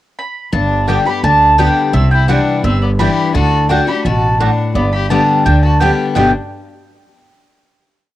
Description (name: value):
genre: bluegrass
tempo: 170 BPM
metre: 4/4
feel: straight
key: G major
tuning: A4 = 440 Hz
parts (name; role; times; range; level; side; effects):
- mandolin; melody; 0.2-6.3 s; D5 to B5; -16 LUFS; right 1 dB; cassette tape
- clear fiddle; second line; 0.5-6.3 s; B3 to G4; -22 LUFS; left 4 dB; cassette tape
- picked steel-string acoustic guitar; accompaniment; 0.5-6.3 s; G2 to G4; -16 LUFS; left 4 dB; cassette tape
- upright bass; bass; 0.5-6.3 s; G1 to D2; -15 LUFS; right 1 dB; none
- mandolin; stabs; 0.9-6.3 s; A3 to G5; -22 LUFS; right 8 dB; cassette tape
room: moderate booth ambience, RT60 0.2 s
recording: home recording on cassette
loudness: -11 LUFS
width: side -14 dB against mid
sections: 0.0-0.5 pickup bar; 0.5-6.2 A section; 6.2-7.6 final chord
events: none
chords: 0.0 N.C.; 0.5 G; 1.9 Cadd9; 3.3 D; 4.8 G